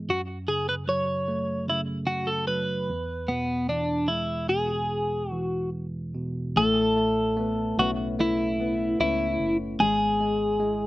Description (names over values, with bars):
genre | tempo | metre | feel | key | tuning
pop | 74 BPM | 4/4 | straight | A major | A4 = 441 Hz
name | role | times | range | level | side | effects
bell-like tine electric piano | accompaniment | 0.0-10.9 s | E2 to A3 | -30 LUFS | right 1 dB | none
twelve-string electric guitar | melody | 0.1-10.9 s | B3 to C#5 | -25 LUFS | equal | slapback echo
nylon-string guitar | arpeggios | 6.6-10.9 s | A2 to G#4 | -31 LUFS | left 7 dB | none
organ-like FM bass | bass | 6.6-10.9 s | F#1 to C#2 | -35 LUFS | equal | none
room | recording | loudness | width
little or no reverb | recorded outdoors, with no room sound | -24 LUFS | side -17 dB against mid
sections
0.0-6.6 A section; 6.6-10.9 B section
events
none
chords
0.1 F#m; 2.9 E; 6.6 Aadd9; 9.8 E/G#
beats
| 0.08 0.88 1.68 2.48 | 3.29 4.10 4.91 5.74 | 6.55 7.37 8.18 8.99 | 9.80 10.61